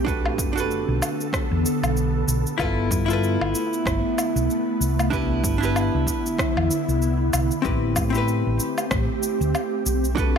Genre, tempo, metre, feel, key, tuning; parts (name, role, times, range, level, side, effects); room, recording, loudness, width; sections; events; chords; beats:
sunset chillout; 95 BPM; 4/4; swing 58% on 16ths; A minor; A4 = 440 Hz
vintage hollow-body jazz guitar; accompaniment; 0.0-10.4 s; C4 to B4; -26 LUFS; moving between left 6 dB and right 8 dB; auto-pan, digital delay
ethereal airy pad; sustained chords; 0.0-10.4 s; D3 to A4; -26 LUFS; equal; ensemble chorus, built-in reverb
hollow-body short-scale fingered electric bass; bass; 0.0-10.4 s; F#1 to A2; -24 LUFS; equal
electronic kick drum; drums; 0.1-10.3 s; -28 LUFS; equal; overdrive, small room reverb
electronic shaker, woodblock and rim click; drums; 0.1-10.4 s; -28 LUFS; left 1 dB; overdrive, small room reverb
light reverb; -20 LUFS; side -7 dB against mid
0.0-10.4 A section
0.1 Bm7; 2.6 G13; 5.1 Cmaj9; 7.7 Am7
| 0.07 0.70 1.33 1.97 | 2.60 3.23 3.86 4.49 | 5.12 5.76 6.39 7.02 | 7.65 8.28 8.91 9.54 | 10.18